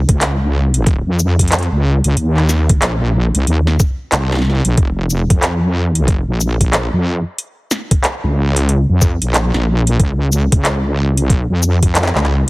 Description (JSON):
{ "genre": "glitch hop", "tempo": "92 BPM", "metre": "4/4", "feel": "swing 62% on 16ths", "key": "unclear", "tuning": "A4 = 441 Hz", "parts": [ { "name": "wobble bass", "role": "bass", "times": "0.0-12.5 s", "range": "F1 to F2", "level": "-14 LUFS", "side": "equal", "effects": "chorus" }, { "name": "drum and bass drum kit", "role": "drums", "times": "0.1-12.3 s", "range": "handclaps, hi-hat, shaker, snare drum", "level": "-18 LUFS", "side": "equal", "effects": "none" }, { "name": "electronic kick drum", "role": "drums", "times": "0.1-11.9 s", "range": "none", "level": "-14 LUFS", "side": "equal", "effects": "none" } ], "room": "little or no reverb", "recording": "heavily compressed radio sound", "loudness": "-12 LUFS", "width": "side -22 dB against mid", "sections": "0.0-12.5 A section", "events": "none", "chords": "none" }